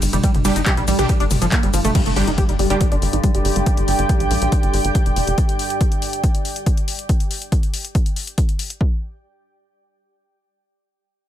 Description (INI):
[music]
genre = driving peak-time techno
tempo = 140 BPM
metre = 4/4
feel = straight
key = unclear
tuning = A4 = 440 Hz
[part]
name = tight sequencer bass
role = bass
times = 0.0-5.3 s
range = F1 to Bb1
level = -21 LUFS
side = equal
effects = sidechain pumping
[part]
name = metallic inharmonic drone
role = drone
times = 0.0-5.4 s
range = G2 to D3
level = -27 LUFS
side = equal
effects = chorus, built-in reverb, sidechain pumping
[part]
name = punchy analog drum machine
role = drums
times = 0.0-8.8 s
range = crash cymbal, handclaps, hi-hat, ride cymbal, shaker, toms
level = -25 LUFS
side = left 3 dB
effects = overdrive, sidechain pumping on hats, sidechain pumping on toms, sidechain pumping on cymbals, sidechain pumping on perc
[part]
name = tight sequenced synth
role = riff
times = 0.1-3.6 s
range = F3 to G4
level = -22 LUFS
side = right 1 dB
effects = chorus, overdrive, sidechain pumping, digital delay
[part]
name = electronic kick drum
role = drums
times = 0.2-8.9 s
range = none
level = -18 LUFS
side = equal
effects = overdrive
[part]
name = supersaw stab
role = stabs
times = 0.4-2.8 s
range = G3 to G4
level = -26 LUFS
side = right 2 dB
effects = sidechain pumping, low-pass filter, ping-pong delay
[part]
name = impact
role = sound effects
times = 1.9-3.7 s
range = none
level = -28 LUFS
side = equal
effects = none
[part]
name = granular cloud pad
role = texture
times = 3.0-5.4 s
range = G4 to G5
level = -24 LUFS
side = right 2 dB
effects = built-in reverb, sidechain pumping
[sound]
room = light reverb, digital ambience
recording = none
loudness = -16 LUFS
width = side -11 dB against mid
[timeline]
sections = 0.0-1.9 A section; 1.9-8.8 B section; 8.8-11.3 C section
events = drop 0.0-1.9; impact 1.9-3.7; filter sweep on synth arpeggio sound 1.9-3.7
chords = 0.0 G5; 8.8 N.C.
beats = | 0.23 0.66 1.09 1.52 | 1.95 2.38 2.81 3.23 | 3.66 4.09 4.52 4.95 | 5.38 5.81 6.24 6.66 | 7.09 7.52 7.95 8.38 | 8.81